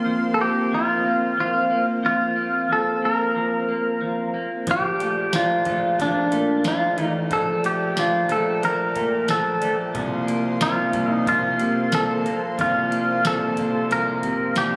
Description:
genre	dream pop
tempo	91 BPM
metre	4/4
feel	straight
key	unclear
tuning	A4 = 436 Hz
part	clean electric guitar	melody	0.0-14.8 s	D4 to Bb4	-24 LUFS	equal	tape echo
part	warm analog pad	sustained chords	0.0-14.8 s	Bb3 to C6	-30 LUFS	equal	chorus
part	semi-hollow electric guitar	arpeggios	0.0-14.8 s	F3 to Bb3	-32 LUFS	equal	lush chorus, tape echo
part	clear concert grand piano	bass	4.7-14.8 s	A1 to C3	-30 LUFS	equal	none
part	booming analog drum machine	drums	4.7-14.7 s	hi-hat, kick drum, snare drum	-32 LUFS	equal	none
room	moderate echo chamber reverb, RT60 2.3 s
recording	recorded on a phone in the room, club reverb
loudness	-22 LUFS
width	mono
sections	0.0-14.8 A section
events	none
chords	0.0 Fsus4; 4.7 Bbmaj7; 9.9 Fsus4

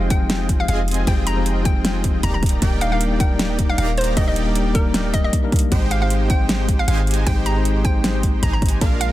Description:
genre	future bass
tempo	155 BPM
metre	4/4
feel	swing 56% on 16ths, half-time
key	unclear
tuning	A4 = 440 Hz
part	mellow tine electric piano	accompaniment	0.0-9.1 s	F3 to G5	-26 LUFS	left 3 dB	medium stereo tremolo, sidechain pumping
part	supersaw stab	riff	0.0-9.1 s	Ab3 to Bb5	-27 LUFS	right 2 dB	sidechain pumping
part	warm 808-style bass	bass	0.0-9.1 s	Eb1 to Bb1	-22 LUFS	equal	sidechain pumping
part	hollow square pluck	melody	0.1-9.1 s	Bb4 to Bb5	-26 LUFS	equal	chorus, sidechain pumping, digital delay
part	electronic kick drum	drums	0.1-8.9 s	none	-19 LUFS	equal	overdrive
part	pop drum kit	drums	0.1-9.1 s	hi-hat, snare drum	-25 LUFS	equal	overdrive
room	digital ambience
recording	dense, heavily limited modern master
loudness	-16 LUFS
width	side -15 dB against mid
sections	0.0-9.1 A section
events	none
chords	0.0 Fm9; 2.4 Ebmaj7; 5.7 Abmaj7

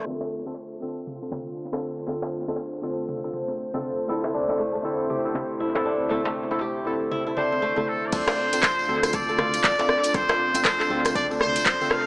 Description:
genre	afro house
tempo	119 BPM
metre	4/4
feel	swing 60% on 16ths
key	D minor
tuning	A4 = 440 Hz
part	kora	arpeggios	0.0-12.1 s	A3 to C5	-28 LUFS	left 1 dB	sidechain pumping, analog delay
part	warm analog pad	sustained chords	0.1-12.1 s	D2 to C5	-32 LUFS	equal	lush chorus, sidechain pumping
part	warm analog keys	stabs	0.1-12.1 s	D3 to A4	-30 LUFS	equal	chorus, vintage 12-bit sampler grit, sidechain pumping, low-pass filter, analog delay
part	djembe	percussion	0.1-11.5 s	none	-34 LUFS	left 1 dB	analog delay
part	afro-pop drum kit	drums	1.1-12.0 s	crash cymbal, handclaps, hi-hat, rim click, toms	-26 LUFS	equal	overdrive, analog delay
part	trumpet with straight mute	melody	7.4-12.1 s	A4 to F5	-24 LUFS	equal	analog delay
part	smooth synth bass	bass	8.1-11.6 s	A1 to D2	-35 LUFS	equal	sidechain pumping
part	electronic kick drum	drums	8.1-11.8 s	none	-32 LUFS	equal	overdrive
part	tambourine	percussion	8.1-11.9 s	none	-37 LUFS	left 1 dB	none
room	moderate spring reverb, RT60 2.5 s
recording	echo-heavy mix, low-pass filter, small speaker sound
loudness	-22 LUFS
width	side -24 dB against mid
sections	0.1-8.1 A section; 8.1-12.1 B section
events	filter sweep on synth keys 0.1-8.1; filter sweep 0.1-8.1; drop 8.1-12.1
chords	0.1 Dm7; 4.1 Am/D; 8.1 Dm7

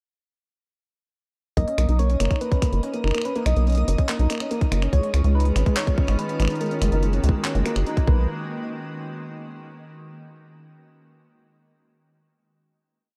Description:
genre	IDM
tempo	143 BPM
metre	4/4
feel	straight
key	B lydian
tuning	A4 = 440 Hz
part	soft struck synth lead	melody	1.6-8.3 s	A#4 to D#5	-33 LUFS	equal	chorus, vintage 12-bit sampler grit, digital delay
part	felt-muted upright piano	arpeggios	1.6-8.3 s	G#3 to G#4	-31 LUFS	equal	tape echo
part	deep acid bass	bass	1.6-8.3 s	F#1 to C#2	-22 LUFS	equal	none
part	electronic kick drum	drums	1.6-8.2 s	none	-23 LUFS	equal	none
part	jungle sampler-style drum kit	drums	1.6-8.1 s	finger snaps, handclaps, hi-hat	-34 LUFS	equal	none
part	twinkling granular texture	texture	2.1-8.3 s	D#4 to D#5	-42 LUFS	equal	built-in reverb
part	icy glass pad	sustained chords	5.3-8.3 s	D#3 to F#4	-35 LUFS	equal	chorus, built-in reverb
room	light reverb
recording	dark, warm production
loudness	-22 LUFS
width	mono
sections	1.6-8.3 groove; 8.3-10.0 final hit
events	none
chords	1.6 Bmaj9; 4.9 C#9; 6.6 F#69; 8.1 Bmaj9; 8.3 N.C.

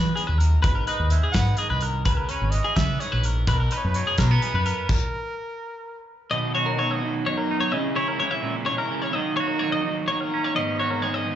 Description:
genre	math rock and midwest emo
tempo	85 BPM (dotted quarters)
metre	6/8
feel	straight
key	unclear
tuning	A4 = 438 Hz
part	warm trumpet	melody	0.0-6.0 s	A#4 to F#5	-32 LUFS	right 2 dB	slapback echo, analog delay
part	twangy electric guitar	accompaniment	0.0-11.4 s	E2 to F#4	-30 LUFS	right 8 dB	slapback echo
part	twelve-string electric guitar	arpeggios	0.0-11.4 s	G#4 to E5	-26 LUFS	left 4 dB	slapback echo
part	fingered electric bass	bass	0.0-4.7 s	G#1 to E3	-22 LUFS	equal	none
part	loose indie drum kit	drums	0.2-5.0 s	crash cymbal, hi-hat, kick drum, snare drum	-25 LUFS	equal	none
part	raw garage guitar	riff	6.3-11.4 s	G#2 to E4	-27 LUFS	right 2 dB	overdrive, spring reverb, slapback echo
room	small room ambience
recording	live gig heard through the venue's PA, club reverb, nothing above 7.9 kHz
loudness	-21 LUFS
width	side -10 dB against mid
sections	0.0-6.3 A section; 6.3-11.4 B section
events	stop 4.9-6.3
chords	0.0 Emaj7; 0.6 G#m; 2.1 C#m7; 3.5 Bmaj7; 6.3 Bmaj9; 7.7 C#m7; 9.1 D#m7; 10.6 G#m11

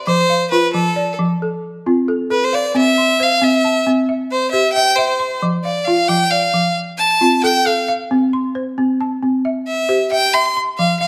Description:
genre	west african traditional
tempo	90 BPM (dotted quarters)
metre	12/8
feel	straight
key	F major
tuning	A4 = 435 Hz
part	balafon	arpeggios	0.0-11.1 s	F3 to C6	-20 LUFS	equal	none
part	clear fiddle	melody	0.1-11.1 s	A4 to C6	-18 LUFS	equal	slapback echo
room	moderate recital hall reverb, RT60 1.5 s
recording	none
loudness	-16 LUFS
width	mono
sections	0.0-11.1 A section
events	fiddle solo 0.0-11.1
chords	0.1 F; 2.7 C; 5.4 F; 8.1 C

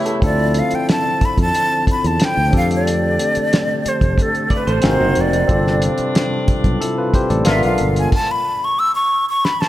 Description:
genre	lush 1970s-style soul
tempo	91 BPM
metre	4/4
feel	straight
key	D dorian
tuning	A4 = 440 Hz
part	barky tine electric piano	accompaniment	0.0-8.1 s	B3 to E5	-21 LUFS	left 1 dB	overdrive
part	tonewheel organ	sustained chords	0.0-8.1 s	B2 to G4	-26 LUFS	right 1 dB	chorus vibrato, stopped rotary speaker
part	warm horn section	stabs	0.0-0.2, 5.5-7.8 s	G2 to E#4	-27 LUFS	left 1 dB	none
part	cloth-damped thuddy drum kit	drums	0.1-9.7 s	crash cymbal, hi-hat, kick drum, snare drum	-19 LUFS	equal	none
part	breathy jazz flute	melody	0.2-9.7 s	A4 to E6	-18 LUFS	equal	none
part	fretless electric bass	bass	0.2-8.1 s	F1 to F2	-21 LUFS	equal	none
part	electric guitar through a small old amp	riff	4.5-5.5 s	D#4 to D5	-25 LUFS	right 4 dB	none
room	moderate concert hall reverb, RT60 2.1 s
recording	none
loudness	-14 LUFS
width	side -14 dB against mid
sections	0.2-9.7 A section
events	band accent 0.0; flute solo 0.2-9.7; drum fill 9.4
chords	0.2 Dm7; 2.5 F69; 4.8 G#9; 5.5 G7sus4; 7.5 G#dim7; 8.1 N.C.

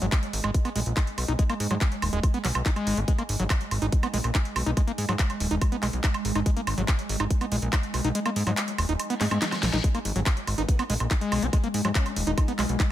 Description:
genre	psychedelic trance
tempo	142 BPM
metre	4/4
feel	straight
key	G# minor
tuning	A4 = 437 Hz
part	evolving wavetable pad	sustained chords	0.0-12.9 s	G#3	-34 LUFS	right 1 dB	chorus, built-in reverb, sidechain pumping
part	screaming distorted acid line	riff	0.0-12.8 s	F#3 to D#4	-31 LUFS	moving between left 5 dB and right 4 dB	distortion, chorus, auto-pan, sidechain pumping, digital delay
part	plucky analog bass	bass	0.0-12.8 s	D#1 to G#2	-27 LUFS	equal	none
part	big-room dance drum kit	drums	0.0-12.9 s	handclaps, hi-hat, snare drum, toms, woodblock	-30 LUFS	right 1 dB	overdrive, small room ambience
part	electronic kick drum	drums	0.1-12.9 s	none	-24 LUFS	equal	small room ambience
part	reverse cymbal	sound effects	9.1-9.8 s	none	-37 LUFS	left 5 dB	none
part	formant-sweep wobble bass	second line	10.6-12.4 s	B3 to D#4	-40 LUFS	left 4 dB	ensemble chorus, sidechain pumping, high-pass filter, digital delay
room	digital ambience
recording	none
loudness	-23 LUFS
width	side -12 dB against mid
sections	0.0-12.9 A section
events	kick drops out 8.2-9.8; reverse cymbal 9.1-9.8; drum fill 9.2-9.8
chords	0.0 G#5

